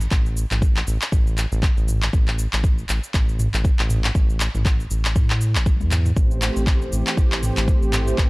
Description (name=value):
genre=afro house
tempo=119 BPM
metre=4/4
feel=swing 57% on 16ths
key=A minor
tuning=A4 = 439 Hz
part: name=round analog bass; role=bass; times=0.0-8.3 s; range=A1 to A2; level=-22 LUFS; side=equal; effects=sidechain pumping
part: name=afro-pop drum kit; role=drums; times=0.0-8.3 s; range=cabasa, handclaps, toms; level=-25 LUFS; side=equal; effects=studio reverb
part: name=electronic kick drum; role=drums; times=0.1-8.3 s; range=none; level=-19 LUFS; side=equal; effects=studio reverb
part: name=warm analog pad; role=sustained chords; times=6.2-8.3 s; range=E3 to C5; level=-26 LUFS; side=right 1 dB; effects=chorus, sidechain pumping
room=digital ambience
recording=dry, gritty hardware recording, cassette tape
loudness=-18 LUFS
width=side -24 dB against mid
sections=0.0-8.3 A section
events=drum fill 5.7-6.2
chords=0.0 N.C.; 2.1 A5; 6.2 Am7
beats=| 0.12 0.62 1.12 1.63 | 2.13 2.64 3.14 3.65 | 4.15 4.66 5.16 5.66 | 6.17 6.67 7.18 7.68 | 8.18